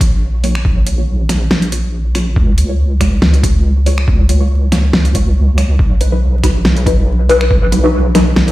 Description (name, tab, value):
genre	deep dubstep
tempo	140 BPM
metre	4/4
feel	swing 54% on 16ths, half-time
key	unclear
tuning	A4 = 440 Hz
part	filtered dub chord stab	stabs	0.0-8.2 s	F#3 to Db5	-18 LUFS	left 1 dB	phaser, lush chorus, dub echo
part	deep soft wobble bass	bass	0.0-8.5 s	Bb1 to Db2	-13 LUFS	equal	chorus
part	dubstep drum kit	drums	0.0-8.5 s	finger snaps, hi-hat, snare drum	-17 LUFS	equal	none
part	electronic kick drum	drums	0.0-7.6 s	none	-14 LUFS	equal	none
room	light reverb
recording	played on a big sound system in a bare room, stone room reverb, vinyl crackle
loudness	-10 LUFS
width	side -16 dB against mid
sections	0.0-8.5 A section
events	filter sweep on synth stab 0.0-8.5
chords	0.0 Bbm; 2.4 Db; 5.8 B